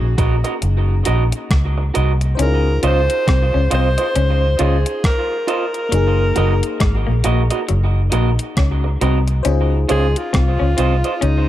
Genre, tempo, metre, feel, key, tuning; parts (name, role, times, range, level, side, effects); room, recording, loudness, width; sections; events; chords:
lovers rock reggae; 68 BPM; 4/4; swing 60% on 16ths; Db major; A4 = 440 Hz
warm alto saxophone; melody; 0.0-11.5 s; Eb4 to C5; -22 LUFS; equal; tape echo
FM electric piano; accompaniment; 0.0-11.5 s; Bb3 to C5; -28 LUFS; left 5 dB; chorus, phaser, tape echo
vintage muted fingered electric bass; bass; 0.0-11.5 s; Gb1 to Db2; -16 LUFS; equal
electric guitar through a small old amp; stabs; 0.2-11.1 s; F4 to Eb5; -23 LUFS; right 5 dB; tape echo
crisp 8-bit digital drum machine; drums; 0.2-11.5 s; hi-hat, kick drum, rim click; -19 LUFS; equal; overdrive
electric guitar through a small old amp; riff; 2.4-11.5 s; Gb3 to Db4; -25 LUFS; left 7 dB; tremolo
light reverb; -14 LUFS; side -13 dB against mid
0.0-11.5 A section
0.0 Gb6; 2.4 Dbmaj9; 5.9 Gb6; 9.5 Dbmaj9